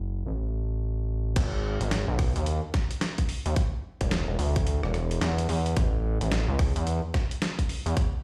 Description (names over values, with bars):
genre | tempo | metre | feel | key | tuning
glitch hop | 109 BPM | 4/4 | swing 62% on 16ths | G# phrygian | A4 = 440 Hz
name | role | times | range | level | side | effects
gritty driven synth bass | bass | 0.0-7.9 s | E1 to E2 | -29 LUFS | equal | none
boom bap sampler-style drum kit | drums | 1.4-8.1 s | crash cymbal, hi-hat, rim click, snare drum | -36 LUFS | equal | none
electronic kick drum | drums | 1.4-8.1 s | none | -28 LUFS | equal | overdrive
room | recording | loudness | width
digital ambience | played on a big sound system in a bare room, large studio reverb | -28 LUFS | mono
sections
0.0-1.4 A section; 1.4-8.2 B section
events
drop 1.4-8.2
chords
none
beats
0.26 0.81 | 1.36 1.91 2.46 3.01 | 3.56 4.11 4.67 5.21 | 5.77 6.32 6.87 7.42 | 7.97